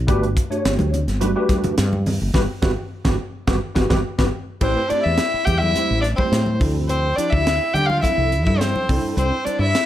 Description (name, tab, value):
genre	electric jazz fusion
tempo	106 BPM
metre	4/4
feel	straight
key	unclear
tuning	A4 = 440 Hz
part	woody fretless electric bass	bass	0.0-9.7 s	F#1 to D3	-21 LUFS	equal	none
part	tine electric piano	accompaniment	0.1-9.7 s	F3 to D5	-24 LUFS	equal	slow stereo tremolo, ensemble chorus
part	crisp fusion drum kit	drums	0.1-9.9 s	crash cymbal, hi-hat, kick drum, snare drum	-23 LUFS	equal	none
part	congas	percussion	0.8-9.0 s	none	-26 LUFS	equal	none
part	dark violin	melody	4.6-9.9 s	C5 to G5	-22 LUFS	left 1 dB	none
part	breathy tenor saxophone	second line	4.6-9.9 s	C4 to G4	-27 LUFS	left 2 dB	none
room	moderate large studio reverb, RT60 1.0 s, studio ambience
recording	none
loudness	-17 LUFS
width	side -12 dB against mid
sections	0.0-4.6 A section; 4.6-9.9 B section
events	band accent 2.3-4.6; drum fill 4.2-4.6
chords	0.1 Gmaj9; 4.6 Am7; 6.6 Dm9; 8.9 C6